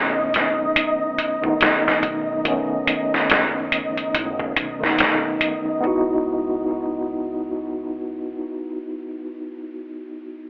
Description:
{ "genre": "trip hop", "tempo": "71 BPM", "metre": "4/4", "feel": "swing 60% on 16ths", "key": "C# minor", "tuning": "A4 = 441 Hz", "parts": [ { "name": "mellow tine electric piano", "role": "accompaniment", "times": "0.0-10.5 s", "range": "D#3 to F#4", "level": "-27 LUFS", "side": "equal", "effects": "tremolo, tape echo" }, { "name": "upright bass", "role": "bass", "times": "0.0-8.3 s", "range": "F#1 to C#2", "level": "-41 LUFS", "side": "equal", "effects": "none" }, { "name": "flickering grainy texture", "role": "texture", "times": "0.0-5.9 s", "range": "D#4 to D#5", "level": "-28 LUFS", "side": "equal", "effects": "built-in reverb" }, { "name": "trip hop sampler-style drum kit", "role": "drums", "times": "0.3-5.6 s", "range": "hi-hat, kick drum, snare drum", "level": "-22 LUFS", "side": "equal", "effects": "vintage 12-bit sampler grit" } ], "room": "moderate echo chamber reverb, RT60 2.2 s", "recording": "telephone sound", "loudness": "-22 LUFS", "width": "mono", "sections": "0.0-5.8 A section; 5.8-9.2 B section", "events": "none", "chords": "0.0 B9; 5.8 C#m11" }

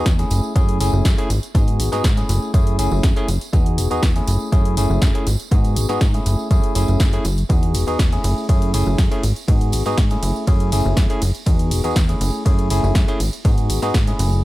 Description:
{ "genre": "filtered disco house", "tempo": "121 BPM", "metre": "4/4", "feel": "straight", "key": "F# dorian", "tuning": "A4 = 440 Hz", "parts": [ { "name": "bell-like tine electric piano", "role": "accompaniment", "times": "0.0-14.4 s", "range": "A3 to G#4", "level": "-23 LUFS", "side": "equal", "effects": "phaser, sidechain pumping" }, { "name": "plucky analog bass", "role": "bass", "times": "0.0-14.4 s", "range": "E1 to G#2", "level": "-20 LUFS", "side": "equal", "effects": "sidechain pumping" }, { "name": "electronic kick drum", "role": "drums", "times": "0.1-14.0 s", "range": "none", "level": "-17 LUFS", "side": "equal", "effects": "none" }, { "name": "punchy analog drum machine", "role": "drums", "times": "0.1-14.3 s", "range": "hi-hat, ride cymbal, snare drum", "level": "-28 LUFS", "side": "equal", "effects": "sidechain pumping on hats, sidechain pumping on cymbals" }, { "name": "tambourine", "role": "percussion", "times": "0.1-14.4 s", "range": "none", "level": "-35 LUFS", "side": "right 8 dB", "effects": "sidechain pumping on perc, analog delay" } ], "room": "little or no reverb", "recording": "echo-heavy mix", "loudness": "-16 LUFS", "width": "side -17 dB against mid", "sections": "0.0-14.4 A section", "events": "none", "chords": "0.3 F#m9; 1.3 G#m7; 2.3 F#m9; 3.5 Emaj9; 4.3 F#m9; 5.3 G#m7; 6.3 F#m9; 7.5 Emaj9; 8.2 F#m9; 9.2 G#m7; 10.2 F#m9; 11.5 Emaj9; 12.2 F#m9; 13.2 G#m7" }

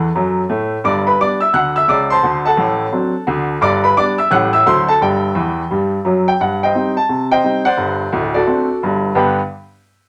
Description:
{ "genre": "jazz, stride piano", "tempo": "173 BPM", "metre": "4/4", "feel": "swing 61% on 8ths", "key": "G major", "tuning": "A4 = 440 Hz", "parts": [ { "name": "clear baby grand piano", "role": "solo", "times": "0.0-9.4 s", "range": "D1 to F#6", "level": "-16 LUFS", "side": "equal", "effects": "none" } ], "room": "wet club reverb, RT60 0.6 s", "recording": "none", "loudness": "-16 LUFS", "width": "mono", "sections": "0.0-6.4 A section; 6.4-9.2 B section", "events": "grand piano fill 0.0-0.9, 5.4-6.4", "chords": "0.0 D (rootless); 0.9 G; 2.2 D7; 3.6 G; 4.3 A7; 4.7 D9; 5.0 G5; 6.4 Cm/G; 7.8 D7; 9.2 G" }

